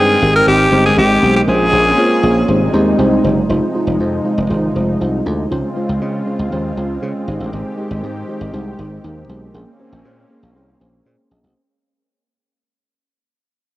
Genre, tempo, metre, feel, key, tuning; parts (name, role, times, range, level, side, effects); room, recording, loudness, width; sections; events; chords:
pop; 119 BPM; 4/4; straight; Ab major; A4 = 441 Hz
raspy tenor saxophone; melody; 0.0-2.5 s; G4 to Bb4; -14 LUFS; equal; cassette tape
mellow FM electric piano; accompaniment; 0.0-11.6 s; Ab3 to Eb5; -18 LUFS; equal; chorus, cassette tape
lush unison pad; sustained chords; 0.0-11.5 s; C3 to G5; -23 LUFS; equal; chorus, cassette tape
dry thumbed slap bass; bass; 0.0-11.5 s; F1 to Db3; -19 LUFS; equal
marimba with soft mallets; second line; 2.0-3.5 s; C4 to F4; -24 LUFS; left 1 dB
moderate lush hall reverb, RT60 2.9 s; home recording on cassette; -13 LUFS; side -16 dB against mid
0.0-3.5 A section; 3.5-11.6 B section
fade-out 3.5-11.6
0.0 Abmaj7; 1.5 Bbm9; 2.5 Abmaj7; 3.5 Fm7; 5.5 Dbmaj7; 7.3 Abmaj7; 9.5 Bbm9